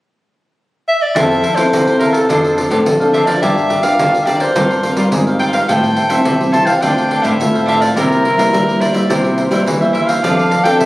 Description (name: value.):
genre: samba and choro.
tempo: 106 BPM.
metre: 4/4.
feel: straight.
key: F major.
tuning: A4 = 440 Hz.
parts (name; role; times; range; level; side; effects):
clear soprano saxophone; melody; 0.9-10.9 s; A4 to A5; -16 LUFS; equal; none.
cavaquinho; accompaniment; 1.1-10.9 s; D4 to G5; -18 LUFS; right 1 dB; none.
nylon-string guitar; accompaniment; 1.2-10.9 s; G2 to Bb4; -18 LUFS; left 1 dB; none.
nylon-string guitar; bass; 1.2-10.9 s; F2 to G3; -18 LUFS; equal; none.
pandeiro; percussion; 1.2-10.9 s; none; -20 LUFS; right 1 dB; none.
room: moderate studio ambience, RT60 0.5 s.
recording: recorded on a phone in the room, club reverb.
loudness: -11 LUFS.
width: side -18 dB against mid.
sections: 0.0-1.2 A section; 1.2-10.9 B section.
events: none.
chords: 0.0 N.C.; 1.2 Fmaj7; 2.3 Dm7/F; 3.4 Gm7; 4.6 C7sus4/G; 5.7 Am7; 6.8 Dm7; 8.0 C7; 10.2 F6.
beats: 0.03 0.60 | 1.16 1.73 2.30 2.86 | 3.43 4.00 4.57 5.13 | 5.70 6.27 6.83 7.40 | 7.97 8.53 9.10 9.67 | 10.23 10.80.